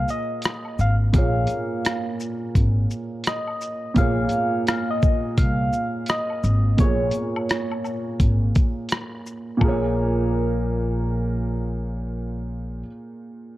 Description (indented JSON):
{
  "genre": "lo-fi hip hop",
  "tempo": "85 BPM",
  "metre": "4/4",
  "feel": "swing 64% on 16ths",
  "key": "Bb minor",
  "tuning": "A4 = 441 Hz",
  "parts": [
    { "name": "soft struck synth lead", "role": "melody", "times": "0.0-12.8 s", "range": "Bb4 to F5", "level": "-28 LUFS", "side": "equal", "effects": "chorus, phaser, low-pass filter" },
    { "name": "felt-muted upright piano", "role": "accompaniment", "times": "0.0-13.6 s", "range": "Bb2 to Db5", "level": "-27 LUFS", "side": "right 2 dB", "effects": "low-pass filter" },
    { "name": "upright bass", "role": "bass", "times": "0.0-12.8 s", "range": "Ab1 to C2", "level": "-23 LUFS", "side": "equal", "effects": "none" },
    { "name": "dusty soul sampler-style drum kit", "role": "drums", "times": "0.1-9.8 s", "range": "hi-hat, kick drum, rim click, shaker", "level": "-21 LUFS", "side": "equal", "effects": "vintage 12-bit sampler grit" },
    { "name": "egg shaker and woodblock", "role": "percussion", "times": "0.1-9.9 s", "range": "none", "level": "-39 LUFS", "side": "left 3 dB", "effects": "none" }
  ],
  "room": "light reverb",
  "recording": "cassette tape",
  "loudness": "-20 LUFS",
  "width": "side -16 dB against mid",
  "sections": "0.0-9.6 A section; 9.6-12.4 B section",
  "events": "none",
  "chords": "0.0 Bbm7"
}